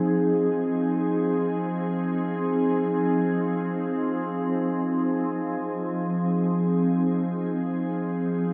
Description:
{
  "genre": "ambient",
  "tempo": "free time",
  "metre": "none",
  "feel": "none",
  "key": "F minor",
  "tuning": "A4 = 440 Hz",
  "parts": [
    { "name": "glassy FM pad", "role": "solo", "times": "0.0-8.5 s", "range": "F3 to Ab4", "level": "-25 LUFS", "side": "equal", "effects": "ensemble chorus, built-in reverb, tape echo" }
  ],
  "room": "wet echo chamber reverb, RT60 2.2 s",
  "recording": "echo-heavy mix",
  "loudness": "-25 LUFS",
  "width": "mono",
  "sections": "0.1-8.5 A section",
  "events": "none",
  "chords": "0.1 Fm7",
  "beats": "free time"
}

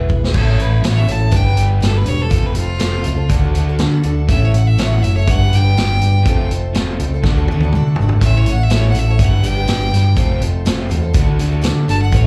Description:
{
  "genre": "folk rock and heartland rock",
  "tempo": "122 BPM",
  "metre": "4/4",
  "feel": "straight",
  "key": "A mixolydian",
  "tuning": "A4 = 440 Hz",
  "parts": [
    { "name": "picked twelve-string acoustic guitar", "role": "accompaniment", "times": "0.0-12.3 s", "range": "A2 to B4", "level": "-28 LUFS", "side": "equal", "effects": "none" },
    { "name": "crunchy overdriven guitar", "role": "riff", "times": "0.0-12.3 s", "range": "E2 to F#4", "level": "-29 LUFS", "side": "equal", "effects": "slapback echo" },
    { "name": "picked electric bass", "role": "bass", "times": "0.0-12.3 s", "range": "E1 to D3", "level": "-17 LUFS", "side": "equal", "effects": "none" },
    { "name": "vintage drum kit", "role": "drums", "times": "0.1-12.2 s", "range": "crash cymbal, hi-hat, kick drum, snare drum, splash cymbal, toms", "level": "-21 LUFS", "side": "equal", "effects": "none" },
    { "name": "bright fiddle", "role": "melody", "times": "0.4-12.3 s", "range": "F4 to A5", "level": "-26 LUFS", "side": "equal", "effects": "none" }
  ],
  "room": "little or no reverb",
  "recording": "live gig heard through the venue's PA, club reverb, faint mains hum",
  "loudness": "-15 LUFS",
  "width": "mono",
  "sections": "0.3-12.3 A section",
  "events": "drum fill 0.0-0.3, 7.2-8.2; fiddle solo 0.3-12.3",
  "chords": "0.3 A; 1.3 G; 2.3 F; 3.3 D; 4.3 A; 5.3 G; 6.3 F; 7.2 D; 8.2 A; 9.2 G; 10.2 F; 11.2 D",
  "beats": "| 0.34 0.83 1.33 1.82 | 2.31 2.81 3.30 3.79 | 4.29 4.78 5.27 5.76 | 6.25 6.75 7.24 7.73 | 8.22 8.71 9.20 9.69 | 10.18 10.67 11.16 11.65 | 12.14"
}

